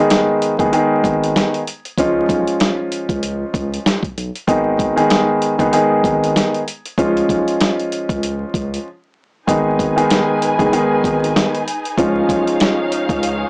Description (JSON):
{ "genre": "hip hop, boom-bap hip-hop", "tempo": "96 BPM", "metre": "4/4", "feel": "swing 56% on 16ths", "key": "G# dorian", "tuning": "A4 = 440 Hz", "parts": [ { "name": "dark baby grand piano", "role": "accompaniment", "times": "0.0-13.5 s", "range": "D#3 to G#4", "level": "-18 LUFS", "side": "equal", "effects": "high-pass filter, low-pass filter" }, { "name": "dusty soul sampler-style drum kit", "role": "drums", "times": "0.1-13.4 s", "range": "hi-hat, kick drum, snare drum", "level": "-22 LUFS", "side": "equal", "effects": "none" }, { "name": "saturated sub bass", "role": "bass", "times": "0.6-13.4 s", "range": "F#1 to C#2", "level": "-27 LUFS", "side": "equal", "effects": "none" }, { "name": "warm studio string section", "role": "sustained chords", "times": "9.5-13.5 s", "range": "D#4 to G#5", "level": "-25 LUFS", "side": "equal", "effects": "high-pass filter, low-pass filter" } ], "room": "light reverb", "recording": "dry, gritty hardware recording, vinyl crackle, small speaker sound", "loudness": "-17 LUFS", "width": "mono", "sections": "0.0-13.5 A section", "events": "break 8.9-9.5", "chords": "0.0 G#m; 2.0 C#add9; 4.5 G#m; 7.0 C#add9; 9.5 G#m; 12.0 C#add9" }